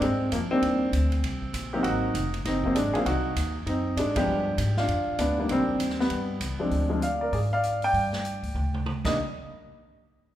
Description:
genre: jazz piano trio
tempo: 197 BPM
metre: 4/4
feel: swing 62% on 8ths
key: C minor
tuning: A4 = 440 Hz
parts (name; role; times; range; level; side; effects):
- dark baby grand piano; melody; 0.0-9.2 s; Eb3 to G5; -26 LUFS; equal; none
- upright bass; bass; 0.0-9.2 s; F1 to Ab2; -29 LUFS; equal; none
- swinging big-band drum kit; drums; 0.0-9.1 s; crash cymbal, hi-hat, kick drum, ride cymbal, snare drum, toms; -36 LUFS; right 2 dB; none
room: wet recital hall reverb, RT60 1.6 s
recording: recorded in a church or concert hall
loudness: -24 LUFS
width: side -12 dB against mid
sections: 0.0-6.7 A section; 6.7-9.2 B section; 9.2-10.3 C section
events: band accent 4.1; drum fill 8.5-9.2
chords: 0.0 Fm; 0.6 Cm7; 1.8 Ab7; 4.3 G7b9; 5.5 Cm7; 6.1 G7; 6.7 Dm7b5; 7.9 G5; 9.0 Cm7; 9.2 N.C.

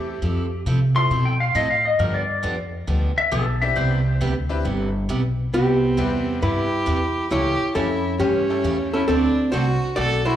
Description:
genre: country, western swing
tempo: 135 BPM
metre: 4/4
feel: swing 67% on 8ths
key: C major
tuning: A4 = 440 Hz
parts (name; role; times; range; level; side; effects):
- clean lap steel guitar; second line; 0.0-4.2 s; G4 to C6; -23 LUFS; left 2 dB; slapback echo
- tack piano; accompaniment; 0.0-9.1 s; C3 to D5; -32 LUFS; left 4 dB; slapback echo
- upright bass; bass; 0.0-10.4 s; G1 to C3; -23 LUFS; equal; none
- picked steel-string acoustic guitar; accompaniment; 0.2-10.2 s; C3 to A4; -29 LUFS; right 4 dB; slapback echo
- archtop guitar, miked and amplified; melody; 5.5-10.4 s; B3 to D5; -21 LUFS; equal; slapback echo
- rich fiddle; second line; 5.5-10.4 s; C4 to A4; -26 LUFS; right 2 dB; slapback echo
room: light reverb, studio ambience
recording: live gig heard through the venue's PA, club reverb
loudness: -19 LUFS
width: side -11 dB against mid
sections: 0.0-5.5 A section; 5.5-10.4 B section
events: electric slide guitar solo 0.0-5.5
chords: 0.2 Fmaj7; 2.0 G7; 3.8 Cmaj9; 5.5 Cmaj7; 7.3 A7/C#; 9.1 D7

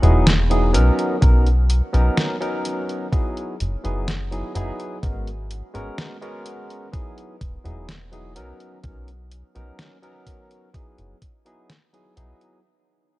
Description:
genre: vaporwave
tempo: 63 BPM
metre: 4/4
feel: straight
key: B major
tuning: A4 = 440 Hz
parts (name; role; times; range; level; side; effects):
- barky tine electric piano; accompaniment; 0.0-12.6 s; F#3 to A#4; -26 LUFS; equal; wide subtle chorus, vintage 12-bit sampler grit, tape echo
- chorused synth bass; bass; 0.0-12.3 s; E1 to B1; -19 LUFS; equal; none
- detuned 8-bit digital drum machine; drums; 0.0-12.6 s; hi-hat, snare drum; -23 LUFS; equal; none
- electronic kick drum; drums; 1.2-11.4 s; none; -21 LUFS; equal; none
room: little or no reverb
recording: cassette tape, nothing above 10.9 kHz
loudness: -18 LUFS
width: side -19 dB against mid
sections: 0.0-12.6 A section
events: fade-out 0.0-12.6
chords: 0.0 Emaj9; 0.7 Bmaj9; 3.1 F#13sus4; 5.0 G#m11; 6.9 Emaj9; 8.4 Bmaj9; 10.7 F#13sus4

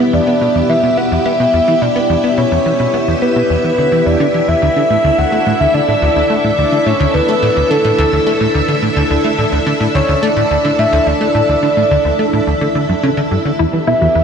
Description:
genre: ambient, sequencer-driven space music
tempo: 107 BPM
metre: 4/4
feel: straight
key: unclear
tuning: A4 = 440 Hz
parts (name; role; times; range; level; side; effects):
- string machine, full ensemble; sustained chords; 0.0-14.2 s; B3 to E5; -16 LUFS; equal; ensemble chorus
- plucky analog bass; riff; 0.0-14.2 s; D2 to B3; -16 LUFS; equal; wide subtle chorus, tape echo
- soft octave-layered synth lead; melody; 0.1-14.2 s; A4 to F#5; -15 LUFS; equal; chorus, cassette tape, tape echo
- wide unison pluck; arpeggios; 13.6-14.2 s; E4 to B4; -20 LUFS; left 6 dB; auto-pan, tape echo
room: wet huge ambient reverb, RT60 7.1 s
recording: none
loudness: -11 LUFS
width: side -7 dB against mid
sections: 0.0-14.2 A section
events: none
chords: 0.0 Em; 4.6 Dsus2; 13.6 Em

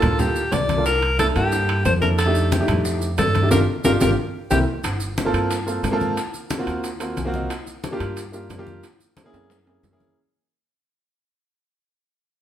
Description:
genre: Afro-Cuban jazz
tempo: 180 BPM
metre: 4/4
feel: straight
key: unclear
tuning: A4 = 439 Hz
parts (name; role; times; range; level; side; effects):
- edgy alto saxophone; melody; 0.0-4.6 s; G4 to D5; -22 LUFS; left 1 dB; none
- warm grand piano; accompaniment; 0.0-10.2 s; A3 to Ab5; -25 LUFS; right 1 dB; none
- upright bass; bass; 0.0-10.1 s; G1 to Ab2; -24 LUFS; equal; none
- bongos; percussion; 0.0-10.2 s; none; -33 LUFS; left 4 dB; none
- congas; percussion; 0.0-10.2 s; none; -26 LUFS; left 2 dB; none
- maracas; percussion; 0.0-10.2 s; none; -36 LUFS; right 4 dB; none
- timbales; percussion; 0.0-10.1 s; none; -28 LUFS; right 1 dB; none
room: wet large studio reverb, RT60 1.0 s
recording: band playing live in one room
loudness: -19 LUFS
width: side -10 dB against mid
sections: 0.0-4.8 A section; 4.8-10.2 B section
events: band accent 3.5-4.8; drum fill 3.8-4.8, 9.3-10.2; fade-out 4.8-10.2; grand piano fill 7.0-7.5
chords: 0.0 Gm7; 0.9 C13; 2.2 F13; 3.5 Gm7; 4.2 C7; 4.8 Gm11; 6.2 Ab13/C (rootless); 7.5 Bb6; 8.8 Gb9

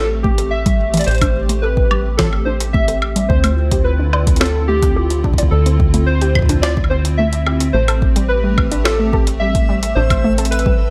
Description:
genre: IDM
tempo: 108 BPM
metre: 4/4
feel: straight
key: A minor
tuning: A4 = 441 Hz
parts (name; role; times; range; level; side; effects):
- warbly lo-fi synth keys; melody; 0.0-10.9 s; G4 to E5; -23 LUFS; equal; chorus, vintage 12-bit sampler grit, delay
- hollow soft pad; sustained chords; 0.1-10.9 s; D3 to A4; -26 LUFS; equal; ensemble chorus
- warbly dusty pluck; arpeggios; 0.0-10.8 s; E3 to D5; -25 LUFS; equal; chorus, cassette tape, digital delay
- metallic FM bass; bass; 0.0-10.9 s; A1 to D2; -20 LUFS; equal; tube saturation
- electronic kick drum; drums; 0.2-10.8 s; none; -19 LUFS; equal; studio reverb
- jungle sampler-style drum kit; drums; 0.4-10.7 s; hi-hat, snare drum, woodblock; -24 LUFS; equal; studio reverb
- backwards swelling texture; texture; 8.7-10.9 s; E5; -33 LUFS; equal; built-in reverb
room: light reverb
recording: none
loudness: -15 LUFS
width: mono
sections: 0.0-10.9 A section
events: none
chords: 0.0 Am7; 3.3 Dm9; 7.7 Am7

